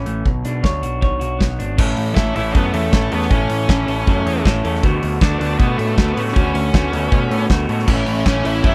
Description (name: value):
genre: indie rock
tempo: 158 BPM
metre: 4/4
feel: straight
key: A major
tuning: A4 = 440 Hz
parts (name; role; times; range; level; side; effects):
- electric guitar through a small old amp; riff; 0.0-8.7 s; A2 to C#5; -24 LUFS; equal; none
- growling picked electric bass; bass; 0.0-8.7 s; G#1 to B2; -24 LUFS; equal; overdrive
- loose indie drum kit; drums; 0.1-8.7 s; crash cymbal, hi-hat, kick drum, snare drum; -20 LUFS; equal; none
- hollow soft pad; sustained chords; 2.6-8.7 s; A4 to C#6; -36 LUFS; equal; none
- octave-fuzz lead guitar; melody; 2.2-8.7 s; A3 to E4; -25 LUFS; equal; distortion, slapback echo
- distorted electric guitar; riff; 7.9-8.7 s; A2 to E4; -26 LUFS; equal; overdrive, ensemble chorus
room: little or no reverb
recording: none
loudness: -18 LUFS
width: mono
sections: 0.0-1.8 A section; 1.8-8.7 B section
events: none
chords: 0.3 Bmadd9; 1.8 A; 4.8 D6; 7.9 A